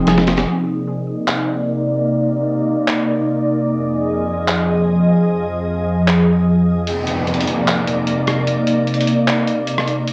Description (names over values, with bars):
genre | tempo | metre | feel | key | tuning
hip hop, atmospheric cloud-rap | 150 BPM | 4/4 | half-time | C minor | A4 = 440 Hz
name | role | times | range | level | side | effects
glassy FM pad | sustained chords | 0.0-10.1 s | F2 to Eb5 | -18 LUFS | equal | ensemble chorus, built-in reverb, low-pass filter, cassette tape
warbly dusty pluck | arpeggios | 0.0-0.5 s | F3 to Eb6 | -27 LUFS | equal | chorus, low-pass filter, cassette tape, tape echo
lo-fi sampler-style drum kit | drums | 0.1-10.1 s | handclaps, hi-hat, rim click, snare drum | -23 LUFS | equal | vintage 12-bit sampler grit, cassette tape
downlifter | sound effects | 6.9-10.1 s | none | -28 LUFS | equal | none
room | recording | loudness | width
light reverb | home recording on cassette | -18 LUFS | mono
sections
0.5-6.9 A section; 6.9-10.1 B section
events
drum fill 0.1-0.5; filter sweep on ambient pad 0.5-6.9; kick muted 5.3-6.9, 6.9-10.1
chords
0.5 Cm9; 3.7 Fm7; 6.9 Cm9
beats
0.07 | 0.47 0.87 1.27 1.67 | 2.07 2.47 2.87 3.27 | 3.67 4.07 4.47 4.87 | 5.27 5.67 6.07 6.47 | 6.87 7.27 7.67 8.07 | 8.47 8.87 9.27 9.67 | 10.07